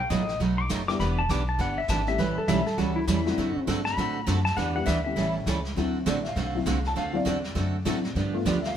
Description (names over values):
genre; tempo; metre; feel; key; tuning
country, western swing; 201 BPM; 4/4; swing 61% on 8ths; D mixolydian; A4 = 440 Hz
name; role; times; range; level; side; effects
pedal steel guitar; second line; 0.0-5.3 s; E4 to D6; -29 LUFS; left 3 dB; none
upright bass; bass; 0.0-8.7 s; E1 to A2; -30 LUFS; left 1 dB; none
picked steel-string acoustic guitar; accompaniment; 0.1-8.8 s; B2 to A4; -29 LUFS; right 5 dB; none
vintage brush drum kit; drums; 0.1-8.8 s; brushed snare drum, hi-hat, kick drum, snare drum; -35 LUFS; equal; none
honky-tonk upright piano; accompaniment; 0.9-8.8 s; F#3 to A5; -30 LUFS; left 3 dB; none
room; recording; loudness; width
moderate stone room reverb, RT60 1.1 s; band playing live in one room; -24 LUFS; side -9 dB against mid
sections
0.0-5.8 A section; 5.8-8.8 A section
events
pedal steel guitar solo 0.0-5.8; honky-tonk piano solo 5.8-8.8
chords
0.0 B7; 1.0 Em7; 2.2 A7; 3.4 D7; 4.6 Em7; 5.2 A7; 5.8 D7; 8.2 G7